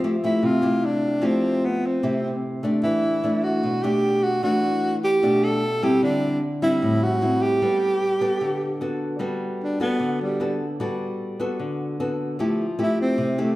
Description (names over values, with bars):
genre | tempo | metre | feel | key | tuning
bossa nova | 150 BPM | 4/4 | straight | G major | A4 = 441 Hz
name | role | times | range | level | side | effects
nylon-string guitar | accompaniment | 0.0-13.6 s | A2 to A4 | -23 LUFS | left 1 dB | none
breathy tenor saxophone | melody | 0.2-13.6 s | G3 to A4 | -22 LUFS | right 1 dB | none
room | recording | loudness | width
wet large studio reverb, RT60 1.4 s | heard from further back in the room | -20 LUFS | side -17 dB against mid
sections
0.0-9.2 A section; 9.2-13.6 B section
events
tenor saxophone solo 9.2-13.6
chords
0.0 Fmaj9; 2.8 Em11; 6.0 D9sus4; 7.6 Gmaj9; 12.4 Fmaj9